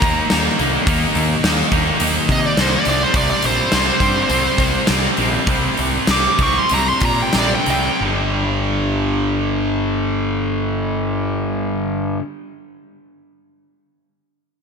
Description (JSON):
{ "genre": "hard rock", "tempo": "89-106 BPM", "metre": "4/4", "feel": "straight", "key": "G minor", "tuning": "A4 = 440 Hz", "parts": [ { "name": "biting lead guitar", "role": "melody", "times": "0.0-8.0 s", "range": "C5 to D6", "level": "-21 LUFS", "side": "right 1 dB", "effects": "overdrive, ping-pong delay" }, { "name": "distorted electric guitar", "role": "riff", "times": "0.0-12.2 s", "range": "G2 to Eb4", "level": "-22 LUFS", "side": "left 9 dB", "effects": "distortion" }, { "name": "distorted electric guitar", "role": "riff", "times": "0.0-12.2 s", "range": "G2 to Eb4", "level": "-22 LUFS", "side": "right 12 dB", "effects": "overdrive" }, { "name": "fuzz picked electric bass", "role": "bass", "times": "0.0-12.2 s", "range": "G1 to C3", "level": "-22 LUFS", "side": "equal", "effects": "overdrive" }, { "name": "huge arena drum kit", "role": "drums", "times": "0.0-7.8 s", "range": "hi-hat, kick drum, snare drum", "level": "-20 LUFS", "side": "equal", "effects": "gated reverb" } ], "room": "moderate lush hall reverb, RT60 2.6 s", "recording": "bright 1980s-style digital production", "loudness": "-15 LUFS", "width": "side -6 dB against mid", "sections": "0.0-8.0 A section; 8.0-10.7 B section", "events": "lead electric guitar solo 0.0-8.0; slowing down 3.1-8.0", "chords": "0.0 Eb5; 2.9 C5; 8.0 G5", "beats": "0.30 | 0.87 1.44 2.01 2.58 | 3.15 3.72 4.30 4.88 | 5.47 6.08 6.70 7.34 | 8.01 8.68 9.35 10.03" }